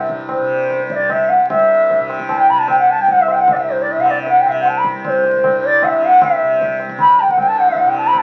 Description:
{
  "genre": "indian classical, Hindustani",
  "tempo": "153 BPM",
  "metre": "3/4",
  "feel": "straight",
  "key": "C raga yaman",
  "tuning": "A4 = 439 Hz",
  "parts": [
    { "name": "mellow bansuri", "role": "melody", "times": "0.0-8.2 s", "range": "C5 to B5", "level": "-15 LUFS", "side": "equal", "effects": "none" },
    { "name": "tanpura", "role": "drone", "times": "0.0-8.2 s", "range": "C2 to C3", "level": "-26 LUFS", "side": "equal", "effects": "none" },
    { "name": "tabla", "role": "percussion", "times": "0.1-8.2 s", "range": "none", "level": "-30 LUFS", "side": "equal", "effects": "none" }
  ],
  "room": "wet studio reverb, RT60 0.5 s",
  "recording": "very old 78 rpm record, vinyl crackle",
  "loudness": "-14 LUFS",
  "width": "mono",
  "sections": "0.0-1.5 A section; 1.5-8.2 B section",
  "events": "speeding up 0.0-8.2",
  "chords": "none"
}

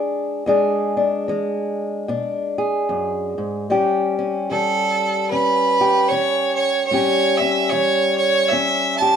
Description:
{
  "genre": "blues",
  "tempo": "75 BPM",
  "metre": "4/4",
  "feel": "swing 61% on 8ths",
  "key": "unclear",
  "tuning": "A4 = 438 Hz",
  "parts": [
    { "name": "fingerpicked old ladder-braced acoustic guitar", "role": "accompaniment", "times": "0.0-9.2 s", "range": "E2 to G#4", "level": "-20 LUFS", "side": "left 2 dB", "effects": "none" },
    { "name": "bright fiddle", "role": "melody", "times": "4.5-9.2 s", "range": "A4 to A5", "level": "-17 LUFS", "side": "right 4 dB", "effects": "none" }
  ],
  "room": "moderate stone room reverb, RT60 1.1 s",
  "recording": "band playing live in one room",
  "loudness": "-17 LUFS",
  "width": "side -7 dB against mid",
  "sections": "0.0-9.2 A section",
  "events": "none",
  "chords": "0.0 E7; 3.7 A7"
}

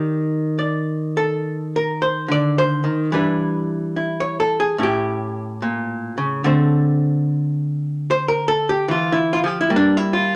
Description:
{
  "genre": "solo jazz",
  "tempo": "72 BPM",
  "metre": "4/4",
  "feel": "swing 66% on 8ths, rubato",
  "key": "unclear",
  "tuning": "A4 = 440 Hz",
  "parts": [
    { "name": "archtop guitar, miked and amplified", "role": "solo", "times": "0.0-10.4 s", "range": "A2 to D5", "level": "-20 LUFS", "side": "equal", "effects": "none" }
  ],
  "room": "wet studio reverb, RT60 0.6 s",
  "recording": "none",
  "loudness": "-20 LUFS",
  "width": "mono",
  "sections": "0.0-10.4 A section",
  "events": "hollow-body jazz guitar solo 0.0-10.4",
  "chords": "0.0 Ebmaj7; 3.1 Em7; 4.8 A7b9; 6.4 Dm7; 9.7 Gm"
}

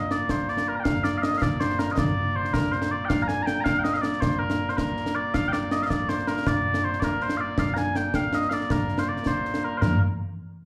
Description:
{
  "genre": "scottish traditional, Scottish pipe music",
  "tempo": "107 BPM (dotted quarters)",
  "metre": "6/8",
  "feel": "straight",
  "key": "Bb major",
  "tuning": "A4 = 440 Hz",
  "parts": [
    { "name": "mellow small bagpipes", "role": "melody", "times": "0.0-10.0 s", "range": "Bb2 to Bb5", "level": "-28 LUFS", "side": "equal", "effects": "slapback echo" },
    { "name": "concert snare drum, concert bass drum and concert toms", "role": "drums", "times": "0.1-9.9 s", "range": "none", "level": "-28 LUFS", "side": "equal", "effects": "slapback echo" }
  ],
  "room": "light reverb",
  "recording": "live gig heard through the venue's PA, club reverb",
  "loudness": "-25 LUFS",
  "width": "mono",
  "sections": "0.9-9.8 A section",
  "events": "none",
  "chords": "none"
}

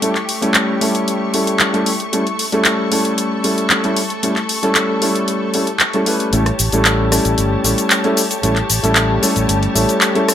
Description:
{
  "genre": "nu-disco, nu disco",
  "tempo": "114 BPM",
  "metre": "4/4",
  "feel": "straight",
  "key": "A mixolydian",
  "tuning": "A4 = 441 Hz",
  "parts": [
    { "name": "warm concert grand piano", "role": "accompaniment", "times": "0.0-10.3 s", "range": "G3 to B4", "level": "-17 LUFS", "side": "equal", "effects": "vintage 12-bit sampler grit, low-pass filter, tape echo" },
    { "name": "rich studio string section", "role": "sustained chords", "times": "0.0-10.3 s", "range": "A3 to C#6", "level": "-24 LUFS", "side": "left 1 dB", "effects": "vintage 12-bit sampler grit, low-pass filter" },
    { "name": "house drum kit", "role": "drums", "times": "0.0-10.3 s", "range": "handclaps, hi-hat, rim click, shaker", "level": "-17 LUFS", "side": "left 1 dB", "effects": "high-pass filter on hats, high-pass filter on perc, high-pass filter on snare" },
    { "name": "fingered electric bass with an envelope filter", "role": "bass", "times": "6.3-9.8 s", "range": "G1 to A1", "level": "-19 LUFS", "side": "equal", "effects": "none" }
  ],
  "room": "light reverb, small room ambience",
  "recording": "none",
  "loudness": "-14 LUFS",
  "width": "side -10 dB against mid",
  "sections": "0.0-6.3 A section; 6.3-10.3 B section",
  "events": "build-up 6.3-10.3",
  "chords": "0.0 A7"
}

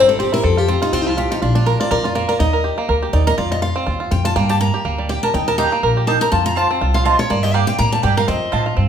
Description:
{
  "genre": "bluegrass",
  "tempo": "245 BPM",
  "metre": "4/4",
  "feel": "swing 56% on 8ths",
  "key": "unclear",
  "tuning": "A4 = 442 Hz",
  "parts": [
    { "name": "bluegrass banjo", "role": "melody", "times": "0.0-8.9 s", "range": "F3 to Bb4", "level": "-21 LUFS", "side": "right 3 dB", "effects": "none" },
    { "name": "picked steel-string acoustic guitar", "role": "accompaniment", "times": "0.0-8.7 s", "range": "D4 to Bb5", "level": "-19 LUFS", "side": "left 3 dB", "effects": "none" },
    { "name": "upright bass", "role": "bass", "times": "0.0-8.9 s", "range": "G1 to A2", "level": "-19 LUFS", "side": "equal", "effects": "none" },
    { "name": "mandolin", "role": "stabs", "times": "5.6-8.6 s", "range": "Bb3 to A5", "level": "-21 LUFS", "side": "right 5 dB", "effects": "none" }
  ],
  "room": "wet large studio reverb, RT60 1.2 s",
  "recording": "band playing live in one room",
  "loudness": "-15 LUFS",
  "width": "side -8 dB against mid",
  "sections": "0.0-8.9 A section",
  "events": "steel-string acoustic guitar solo 0.0-8.9",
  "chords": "0.4 F5; 1.4 Bb; 2.4 Eb; 3.4 F5; 4.4 Gm; 5.3 Eb; 6.3 F; 7.3 Gm; 8.3 F"
}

